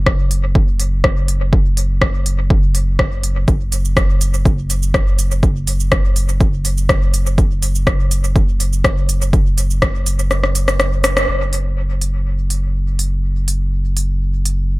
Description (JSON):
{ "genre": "dub techno", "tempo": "123 BPM", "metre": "4/4", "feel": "straight", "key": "unclear", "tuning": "A4 = 440 Hz", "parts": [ { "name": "pure sine sub bass", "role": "bass", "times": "0.0-14.8 s", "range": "F#1", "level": "-17 LUFS", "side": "equal", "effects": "sidechain pumping" }, { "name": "deep house drum kit", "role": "drums", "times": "0.1-14.6 s", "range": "hi-hat, rim click, shaker", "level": "-19 LUFS", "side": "equal", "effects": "dub echo" }, { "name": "electronic kick drum", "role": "drums", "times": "0.1-9.9 s", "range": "none", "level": "-16 LUFS", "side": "equal", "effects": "none" } ], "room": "little or no reverb", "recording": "echo-heavy mix", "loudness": "-14 LUFS", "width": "side -21 dB against mid", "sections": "0.0-11.3 A section; 11.3-14.8 B section", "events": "kick drops out 10.3-11.3; drum fill 10.3-11.3; band accent 11.2", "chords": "none" }